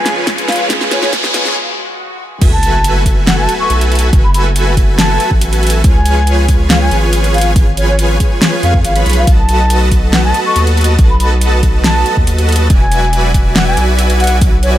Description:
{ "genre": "future bass", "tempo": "140 BPM", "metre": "4/4", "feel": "half-time", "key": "F# minor", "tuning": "A4 = 440 Hz", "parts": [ { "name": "wooden flute", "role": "melody", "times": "0.0-14.8 s", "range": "C#5 to C#6", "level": "-18 LUFS", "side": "left 1 dB", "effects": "sidechain pumping, ping-pong delay" }, { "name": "felt-muted upright piano", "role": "accompaniment", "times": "0.0-2.4 s", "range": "G#3 to G#4", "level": "-24 LUFS", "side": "left 3 dB", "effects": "sidechain pumping, ping-pong delay" }, { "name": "clear studio string section", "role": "sustained chords", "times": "0.0-2.4 s", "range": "C#3 to B4", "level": "-27 LUFS", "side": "right 1 dB", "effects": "none" }, { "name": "dense compressed supersaw", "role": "riff", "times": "0.0-14.8 s", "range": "E#4 to B5", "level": "-17 LUFS", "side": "right 1 dB", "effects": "sidechain pumping" }, { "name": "riser, swell and sub drop", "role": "sound effects", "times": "0.0-4.1 s", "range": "none", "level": "-19 LUFS", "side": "equal", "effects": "none" }, { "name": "pop drum kit", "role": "drums", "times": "0.1-14.7 s", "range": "crash cymbal, hi-hat, snare drum", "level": "-17 LUFS", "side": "equal", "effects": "none" }, { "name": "electronic kick drum", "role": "drums", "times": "0.3-14.5 s", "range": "none", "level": "-11 LUFS", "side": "equal", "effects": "none" }, { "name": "saturated sub bass", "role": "bass", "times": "2.4-14.8 s", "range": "E1 to E#2", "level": "-13 LUFS", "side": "equal", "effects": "sidechain pumping" } ], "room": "little or no reverb", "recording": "high-pass filter", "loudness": "-9 LUFS", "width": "side -13 dB against mid", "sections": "0.0-2.4 A section; 2.4-14.8 B section", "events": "build-up 0.0-2.4; drum fill 0.0-1.6; riser 0.0-1.6; break 1.6-2.4; swell 1.6-2.4; drop 2.4-14.8; impact 2.4-4.1", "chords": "0.0 C#7; 2.4 F#m11; 5.8 C#7; 9.3 B7; 12.7 E9", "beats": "0.27 | 0.70 1.13 1.56 1.99 | 2.42 2.84 3.27 3.70 | 4.13 4.56 4.99 5.42 | 5.84 6.27 6.70 7.13 | 7.56 7.99 8.42 8.84 | 9.27 9.70 10.13 10.56 | 10.99 11.42 11.84 12.27 | 12.70 13.13 13.56 13.99 | 14.42" }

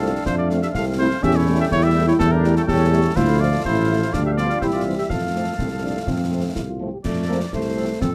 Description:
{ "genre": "military-style march for wind band", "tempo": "124 BPM", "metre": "2/4", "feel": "straight", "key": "F major", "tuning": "A4 = 441 Hz", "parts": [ { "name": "warm cornet", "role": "melody", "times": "0.0-7.9 s", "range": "A4 to F5", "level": "-28 LUFS", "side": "equal", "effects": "none" }, { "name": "clear euphonium", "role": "second line", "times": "0.0-8.1 s", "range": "A3 to G4", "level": "-28 LUFS", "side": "equal", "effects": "none" }, { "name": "mellow flute section", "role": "second line", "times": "0.0-6.5 s", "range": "C4 to A4", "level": "-30 LUFS", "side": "equal", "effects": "none" }, { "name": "warm woodwind section", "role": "second line", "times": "0.0-8.1 s", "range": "G4 to G5", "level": "-34 LUFS", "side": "equal", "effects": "none" }, { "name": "mellow French horn section", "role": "accompaniment", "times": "0.0-7.8 s", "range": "E3 to F4", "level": "-30 LUFS", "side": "equal", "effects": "none" }, { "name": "mellow trombone section", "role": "sustained chords", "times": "0.0-6.8 s", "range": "E3 to A3", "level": "-34 LUFS", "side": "equal", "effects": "none" }, { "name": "mellow tuba", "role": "bass", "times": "0.0-8.1 s", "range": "A1 to F2", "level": "-24 LUFS", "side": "equal", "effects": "none" }, { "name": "concert snare drum, concert bass drum and clash cymbals", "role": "drums", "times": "0.3-8.1 s", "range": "none", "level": "-31 LUFS", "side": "equal", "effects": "none" } ], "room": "moderate studio ambience, RT60 0.5 s", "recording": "none", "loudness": "-20 LUFS", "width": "mono", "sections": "0.0-7.0 A section; 7.0-8.1 A section", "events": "none", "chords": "0.0 F; 1.2 A7/E; 3.2 Dm; 4.1 G7/D; 4.6 C; 5.1 F", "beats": "| 0.26 0.74 | 1.23 1.71 | 2.20 2.68 | 3.17 3.65 | 4.13 4.62 | 5.10 5.59 | 6.07 6.56 | 7.04 7.53 | 8.01" }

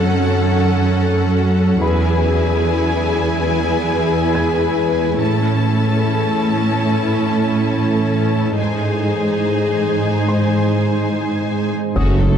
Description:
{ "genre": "cinematic, hybrid orchestral and electronic film score", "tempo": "71 BPM", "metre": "4/4", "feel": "straight", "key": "unclear", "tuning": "A4 = 440 Hz", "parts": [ { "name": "rich symphonic violin section", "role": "second line", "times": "0.0-12.4 s", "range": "A3 to A5", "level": "-23 LUFS", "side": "left 4 dB", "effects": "none" }, { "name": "rich symphonic viola section", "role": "accompaniment", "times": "0.0-12.4 s", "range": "F#3 to A4", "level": "-22 LUFS", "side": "equal", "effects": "none" }, { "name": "deep dark ambient pad", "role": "sustained chords", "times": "0.0-12.4 s", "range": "E3 to C#5", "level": "-22 LUFS", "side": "left 1 dB", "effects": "chorus, built-in reverb" }, { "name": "rich symphonic cello section", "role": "bass", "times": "0.0-12.4 s", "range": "E2 to A2", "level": "-18 LUFS", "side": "right 2 dB", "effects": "none" }, { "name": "felt-muted upright piano", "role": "texture", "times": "1.8-12.4 s", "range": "B4 to G#6", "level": "-30 LUFS", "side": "left 2 dB", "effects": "digital delay" }, { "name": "clear symphonic violin section", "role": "melody", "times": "12.0-12.4 s", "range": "F#4 to A4", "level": "-28 LUFS", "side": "left 2 dB", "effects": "none" }, { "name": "mellow French horn section", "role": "sustained chords", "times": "12.0-12.4 s", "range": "C#4 to F#4", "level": "-29 LUFS", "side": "left 2 dB", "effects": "none" }, { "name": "warm trombone section", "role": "sustained chords", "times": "12.0-12.4 s", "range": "C#3 to A3", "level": "-28 LUFS", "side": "right 3 dB", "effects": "none" }, { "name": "mellow tuba", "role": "bass", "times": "12.0-12.4 s", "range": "F#1", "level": "-22 LUFS", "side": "right 3 dB", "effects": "none" }, { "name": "rich symphonic double bass section", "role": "bass", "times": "12.0-12.4 s", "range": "F#1", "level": "-19 LUFS", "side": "right 3 dB", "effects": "none" }, { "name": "warm sub bass", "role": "bass", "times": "12.0-12.4 s", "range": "F#1", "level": "-18 LUFS", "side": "left 1 dB", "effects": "none" }, { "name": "impact", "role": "sound effects", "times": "12.0-12.4 s", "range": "none", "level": "-23 LUFS", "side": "left 1 dB", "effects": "none" } ], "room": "moderate scoring stage reverb, RT60 1.9 s", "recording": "dark, warm production", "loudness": "-15 LUFS", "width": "side -8 dB against mid", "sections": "0.0-12.0 A section", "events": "impact 12.0-12.4", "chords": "0.0 F#m; 1.8 E; 5.2 A; 8.6 G#", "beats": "0.13 0.98 | 1.82 2.67 3.51 4.36 | 5.20 6.05 6.89 7.74 | 8.58 9.43 10.27 11.12 | 11.96" }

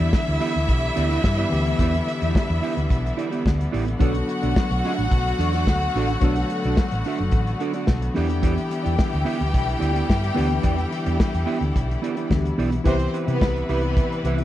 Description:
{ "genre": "disco", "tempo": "108 BPM", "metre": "4/4", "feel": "straight", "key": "E minor", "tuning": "A4 = 439 Hz", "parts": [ { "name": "rich studio violin section", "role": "second line", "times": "0.0-14.2 s", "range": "B3 to G5", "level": "-28 LUFS", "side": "left 2 dB", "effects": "none" }, { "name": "mellow electric guitar", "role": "accompaniment", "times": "0.0-14.4 s", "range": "B3 to E5", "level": "-27 LUFS", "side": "right 7 dB", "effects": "none" }, { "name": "tine electric piano", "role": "accompaniment", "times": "0.0-14.4 s", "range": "E3 to A4", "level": "-29 LUFS", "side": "left 5 dB", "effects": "auto-pan" }, { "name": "clear studio string section", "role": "sustained chords", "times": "0.0-14.4 s", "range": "C3 to B4", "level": "-30 LUFS", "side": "left 1 dB", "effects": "none" }, { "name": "hollow-body short-scale fingered electric bass", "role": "bass", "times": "0.0-14.4 s", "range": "F#1 to C3", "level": "-24 LUFS", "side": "equal", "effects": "none" }, { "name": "warm soul drum kit", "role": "drums", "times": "0.1-14.4 s", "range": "hi-hat, kick drum, snare drum", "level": "-22 LUFS", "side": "equal", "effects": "none" } ], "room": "little or no reverb", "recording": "dark, warm production", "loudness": "-20 LUFS", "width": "side -13 dB against mid", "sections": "0.0-12.9 A section; 12.9-14.4 B section", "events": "none", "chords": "0.0 Em7; 4.0 Bm7; 8.2 Em7; 12.9 Cmaj7", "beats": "0.13 0.69 1.24 | 1.79 2.35 2.90 3.45 | 4.01 4.56 5.12 5.67 | 6.22 6.78 7.33 7.88 | 8.44 8.99 9.54 10.10 | 10.65 11.20 11.76 12.31 | 12.86 13.41 13.96" }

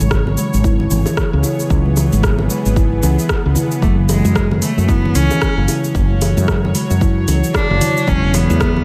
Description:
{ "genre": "organic downtempo", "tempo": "113 BPM", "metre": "4/4", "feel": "swing 60% on 16ths", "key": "unclear", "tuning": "A4 = 440 Hz", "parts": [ { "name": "bowed-like drone", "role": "sustained chords", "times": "0.0-8.8 s", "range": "E3 to C#5", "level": "-29 LUFS", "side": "equal", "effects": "built-in reverb, sidechain pumping" }, { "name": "steel tongue drum", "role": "arpeggios", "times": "0.0-8.8 s", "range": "C#3 to E4", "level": "-21 LUFS", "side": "equal", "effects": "digital delay" }, { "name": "woody fretless electric bass", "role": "bass", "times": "0.0-8.8 s", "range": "E1 to F#2", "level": "-18 LUFS", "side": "equal", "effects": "none" }, { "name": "deep house drum kit", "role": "drums", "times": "0.0-8.7 s", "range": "hi-hat, rim click, shaker", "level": "-26 LUFS", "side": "equal", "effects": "overdrive" }, { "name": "congas and bongos", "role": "percussion", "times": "0.0-8.8 s", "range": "none", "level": "-28 LUFS", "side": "equal", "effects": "none" }, { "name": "electronic kick drum", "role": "drums", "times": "0.1-8.7 s", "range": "none", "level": "-20 LUFS", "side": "equal", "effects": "overdrive" }, { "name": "rich cello", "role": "melody", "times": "3.8-8.8 s", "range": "G#3 to D4", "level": "-23 LUFS", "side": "equal", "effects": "vintage 12-bit sampler grit, delay" } ], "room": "light reverb", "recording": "none", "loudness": "-15 LUFS", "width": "mono", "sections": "0.0-8.8 A section", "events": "none", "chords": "0.0 C#m7; 3.8 F#5; 8.1 E", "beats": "0.11 0.64 1.17 | 1.70 2.23 2.77 3.30 | 3.83 4.36 4.89 5.42 | 5.95 6.48 7.01 7.54 | 8.08 8.61" }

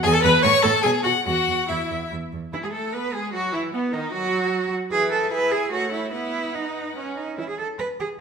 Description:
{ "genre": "quick classical-period movement for string quartet", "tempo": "138-154 BPM", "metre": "3/4", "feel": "rubato", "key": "E major", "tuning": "A4 = 440 Hz", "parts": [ { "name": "clear violin", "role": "melody", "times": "0.0-8.1 s", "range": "B3 to C#6", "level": "-26 LUFS", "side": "left 8 dB", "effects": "none" }, { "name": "rich violin", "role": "second line", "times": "0.0-8.1 s", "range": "B3 to C#5", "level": "-28 LUFS", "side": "left 4 dB", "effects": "none" }, { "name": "rich viola", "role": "accompaniment", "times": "0.0-7.7 s", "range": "D#3 to C#5", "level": "-26 LUFS", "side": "right 3 dB", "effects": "none" }, { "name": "rich cello", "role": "bass", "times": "0.0-8.1 s", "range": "E2 to B4", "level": "-25 LUFS", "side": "right 3 dB", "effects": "none" } ], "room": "moderate recital hall reverb, RT60 1.4 s", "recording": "minimal, uncompressed stereo recording", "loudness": "-20 LUFS", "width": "side -6 dB against mid", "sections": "0.0-2.5 A section; 2.5-8.2 A section", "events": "none", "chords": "0.4 A; 0.8 B5; 1.3 Esus2; 2.5 E; 3.7 B; 4.9 E; 5.7 F#m/A; 6.1 B; 7.4 E", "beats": "| 0.04 0.44 0.84 | 1.27 1.70 2.12 | 2.53 2.94 3.34 | 3.73 4.13 4.53 | 4.92 5.32 5.72 | 6.13 6.55 6.97 | 7.38 7.79" }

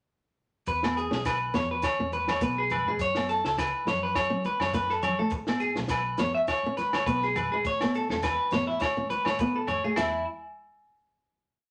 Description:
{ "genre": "highlife guitar band", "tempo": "103 BPM", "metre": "4/4", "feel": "swing 55% on 16ths", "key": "E major", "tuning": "A4 = 439 Hz", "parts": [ { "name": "clean electric guitar", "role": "arpeggios", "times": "0.7-10.2 s", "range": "E4 to E5", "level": "-30 LUFS", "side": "equal", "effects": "none" }, { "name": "fingered electric bass", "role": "bass", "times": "0.7-10.2 s", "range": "B1 to F#3", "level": "-41 LUFS", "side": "equal", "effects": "none" }, { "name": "compact cocktail drum kit", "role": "drums", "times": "0.7-10.1 s", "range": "kick drum, ride cymbal, snare drum", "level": "-37 LUFS", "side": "equal", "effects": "none" }, { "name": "maracas", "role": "percussion", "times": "0.7-10.2 s", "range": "none", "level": "-53 LUFS", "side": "equal", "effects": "none" }, { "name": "flamenco guitar", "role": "accompaniment", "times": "0.8-10.1 s", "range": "E3 to C#4", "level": "-34 LUFS", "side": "equal", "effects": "none" }, { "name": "agogo bells", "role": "percussion", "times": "0.8-10.1 s", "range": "none", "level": "-38 LUFS", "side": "equal", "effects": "none" }, { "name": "congas", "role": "percussion", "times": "1.1-10.2 s", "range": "none", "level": "-42 LUFS", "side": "equal", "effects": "none" } ], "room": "wet studio reverb, RT60 0.6 s", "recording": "none", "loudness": "-28 LUFS", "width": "mono", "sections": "0.7-10.0 groove; 10.0-11.7 final chord", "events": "none", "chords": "0.7 E; 3.0 F#m; 5.3 E (rootless); 7.6 A; 10.0 N.C.", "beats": "| 0.67 1.25 1.83 2.41 | 2.99 3.57 4.16 4.74 | 5.32 5.90 6.48 7.06 | 7.64 8.22 8.80 9.38 | 9.96" }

